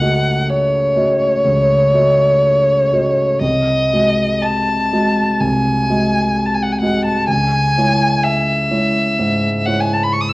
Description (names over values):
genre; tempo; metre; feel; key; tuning
classical, romantic duo for violin and grand piano; 63 BPM; 4/4; rubato; C# minor; A4 = 443 Hz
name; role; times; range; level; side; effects
warm violin; melody; 0.0-10.3 s; C#5 to E6; -15 LUFS; equal; none
dark concert grand piano; accompaniment; 0.0-10.3 s; B#1 to D#5; -17 LUFS; equal; none
room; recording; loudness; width
wet recital hall reverb, RT60 1.3 s; worn, warbling old tape, cassette tape, warbly pitch drift; -13 LUFS; side -21 dB against mid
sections
0.0-10.3 A section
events
none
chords
0.0 D#m7b5/C#; 3.4 G#7/B#; 7.3 C#m